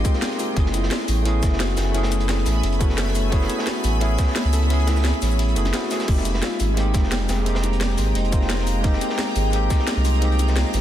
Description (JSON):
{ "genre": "liquid drum and bass", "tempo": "174 BPM", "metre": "4/4", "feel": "straight", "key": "unclear", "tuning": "A4 = 440 Hz", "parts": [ { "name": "bell-like tine electric piano", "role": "accompaniment", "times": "0.0-10.8 s", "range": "Ab3 to Ab4", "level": "-26 LUFS", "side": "equal", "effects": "dub echo" }, { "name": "shimmering ambient pad", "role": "sustained chords", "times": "0.0-10.8 s", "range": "Ab3 to C6", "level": "-30 LUFS", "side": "left 1 dB", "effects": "chorus, built-in reverb, sidechain pumping" }, { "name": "harp-like synth pluck", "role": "arpeggios", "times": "0.0-10.7 s", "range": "Eb4 to Db5", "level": "-31 LUFS", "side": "left 1 dB", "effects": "chorus, dub echo" }, { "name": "warm sub bass", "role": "bass", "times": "0.0-10.8 s", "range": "F1 to Db2", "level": "-21 LUFS", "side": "equal", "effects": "none" }, { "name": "drum and bass drum kit", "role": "drums", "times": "0.0-10.8 s", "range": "crash cymbal, hi-hat, shaker, snare drum", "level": "-29 LUFS", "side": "equal", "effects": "overdrive" }, { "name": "electronic kick drum", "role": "drums", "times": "0.0-9.8 s", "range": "none", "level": "-20 LUFS", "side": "equal", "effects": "overdrive" }, { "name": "crunchy breakbeat drum kit", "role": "drums", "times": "0.1-10.8 s", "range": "hi-hat, snare drum", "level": "-34 LUFS", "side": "equal", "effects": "high-pass filter on hats, high-pass filter on snare, high-pass filter on room" } ], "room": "light reverb", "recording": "dense, heavily limited modern master", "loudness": "-18 LUFS", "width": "side -11 dB against mid", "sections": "0.0-10.8 A section", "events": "break 5.4-6.1", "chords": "0.0 Fm11; 0.6 Gbm11; 6.1 Fm11" }